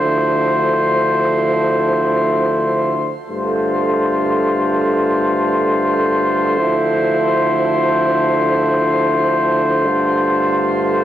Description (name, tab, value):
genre	hip hop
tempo	free time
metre	none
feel	none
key	unclear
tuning	A4 = 441 Hz
part	mellow brass ensemble	solo	0.0-11.0 s	D2 to C5	-14 LUFS	equal	none
room	light reverb, small room reverb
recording	dry, gritty hardware recording, transformer saturation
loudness	-14 LUFS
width	side -12 dB against mid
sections	0.0-3.3 A section; 3.3-11.0 B section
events	none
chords	0.0 Dm7; 3.3 G7sus4; 6.6 Dm7; 9.9 G7sus4